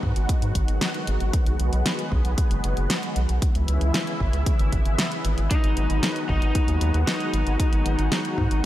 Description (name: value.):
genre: synthwave.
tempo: 115 BPM.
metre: 4/4.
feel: straight.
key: G# minor.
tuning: A4 = 440 Hz.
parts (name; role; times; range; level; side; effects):
analog string pad; sustained chords; 0.0-8.7 s; C#3 to F#4; -29 LUFS; equal; ensemble chorus, sidechain pumping.
round analog bass; bass; 0.0-8.6 s; F#1 to G#2; -23 LUFS; equal; none.
electronic kick drum; drums; 0.0-8.5 s; none; -23 LUFS; equal; none.
pop drum kit; drums; 0.2-8.6 s; hi-hat, snare drum; -28 LUFS; equal; none.
lead guitar through a small cranked amp; melody; 5.5-8.7 s; D#4; -28 LUFS; left 3 dB; overdrive, digital delay.
room: digital ambience.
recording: none.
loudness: -21 LUFS.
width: side -14 dB against mid.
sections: 0.0-8.7 A section.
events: none.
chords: 0.0 G#m7; 1.3 B6; 3.4 C#m7; 5.5 G#m7.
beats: 0.29 0.81 | 1.33 1.86 2.38 2.90 | 3.42 3.94 4.46 4.99 | 5.51 6.03 6.55 7.07 | 7.60 8.12 8.64.